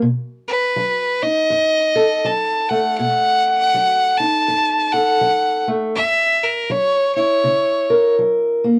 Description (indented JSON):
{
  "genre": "acoustic country blues, solo or duo",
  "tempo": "81 BPM",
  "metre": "4/4",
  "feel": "swing 61% on 8ths",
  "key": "unclear",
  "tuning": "A4 = 441 Hz",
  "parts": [
    { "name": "fingerpicked steel-string acoustic guitar", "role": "accompaniment", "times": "0.0-8.8 s", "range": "F#2 to A#4", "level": "-22 LUFS", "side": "equal", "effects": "none" },
    { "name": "clear fiddle", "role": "melody", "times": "0.5-8.1 s", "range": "A#4 to A5", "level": "-18 LUFS", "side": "equal", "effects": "none" }
  ],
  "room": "moderate studio ambience, RT60 0.5 s",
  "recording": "worn, warbling old tape, cassette tape, warbly pitch drift",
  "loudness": "-17 LUFS",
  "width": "mono",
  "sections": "0.0-8.8 A section",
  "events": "none",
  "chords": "0.0 B7; 6.0 F#7"
}